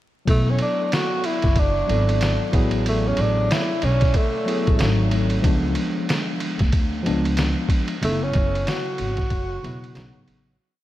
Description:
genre	hip hop, jazz-hop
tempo	93 BPM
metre	4/4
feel	swing 60% on 16ths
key	unclear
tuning	A4 = 440 Hz
part	breathy tenor saxophone	melody	0.3-10.3 s	A3 to F#4	-26 LUFS	right 1 dB	ping-pong delay
part	mellow tine electric piano	accompaniment	0.3-10.6 s	C#3 to A4	-26 LUFS	left 1 dB	overdrive, medium stereo tremolo
part	upright bass	bass	0.3-10.6 s	E1 to D2	-23 LUFS	equal	none
part	lo-fi sampler-style drum kit	drums	0.3-10.5 s	hi-hat, kick drum, ride cymbal, snare drum	-23 LUFS	equal	none
room	moderate huge ambient reverb, RT60 7.9 s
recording	dreamy mix soaked in reverb, vinyl crackle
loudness	-19 LUFS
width	side -14 dB against mid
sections	0.3-10.6 A section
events	fade-out 8.0-10.6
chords	0.3 E9sus4; 2.5 Asus2; 4.8 G#7b9; 5.4 C#7b9; 8.0 F#sus2; 10.0 B9

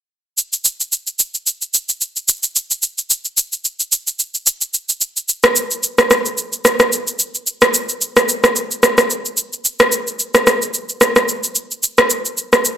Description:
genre	amapiano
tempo	110 BPM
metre	4/4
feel	swing 55% on 16ths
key	none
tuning	none
part	electronic shaker and rim click	drums	0.4-12.8 s	none	-13 LUFS	equal	none
room	moderate digital room reverb, RT60 1.2 s, digital ambience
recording	none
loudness	-14 LUFS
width	side -10 dB against mid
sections	0.4-12.8 A section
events	none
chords	none

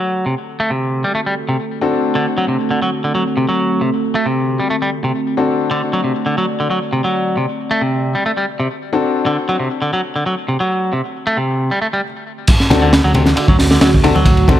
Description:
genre	breakbeat, breaks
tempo	135 BPM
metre	4/4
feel	straight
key	unclear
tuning	A4 = 442 Hz
part	warbly tape-like pad	sustained chords	0.0-14.6 s	D3 to D5	-23 LUFS	right 1 dB	chorus, built-in reverb, sidechain pumping
part	clean electric guitar	riff	0.0-14.6 s	C3 to A3	-18 LUFS	equal	low-pass filter, ping-pong delay
part	clear grand piano	stabs	0.0-14.6 s	C4 to A4	-20 LUFS	left 5 dB	ping-pong delay
part	crunchy breakbeat drum kit	drums	12.5-14.6 s	crash cymbal, hi-hat, kick drum, ride cymbal, snare drum	-12 LUFS	equal	none
part	picked electric bass	bass	12.7-14.6 s	D2	-15 LUFS	equal	none
part	congas	percussion	12.7-14.6 s	none	-20 LUFS	left 2 dB	none
room	light reverb, studio ambience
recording	none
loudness	-14 LUFS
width	side -11 dB against mid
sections	0.0-12.5 A section; 12.5-14.6 B section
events	filter sweep on ambient pad 0.0-12.5; stop 12.0-12.5; drop 12.5-14.6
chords	0.0 D7

